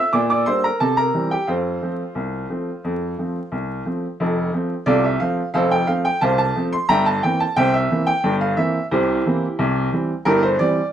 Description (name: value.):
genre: ragtime piano.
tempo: 89 BPM.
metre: 2/4.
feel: straight.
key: F major.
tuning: A4 = 440 Hz.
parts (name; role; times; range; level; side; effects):
clear upright piano; solo; 0.0-10.9 s; F1 to E6; -18 LUFS; right 1 dB; none.
room: moderate studio reverb, RT60 0.6 s.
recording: vinyl crackle.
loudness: -18 LUFS.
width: side -10 dB against mid.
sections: 0.0-4.2 A section; 4.2-10.9 B section.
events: none.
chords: 0.1 Gm/Bb; 0.8 C7; 1.5 F; 6.9 C7/G.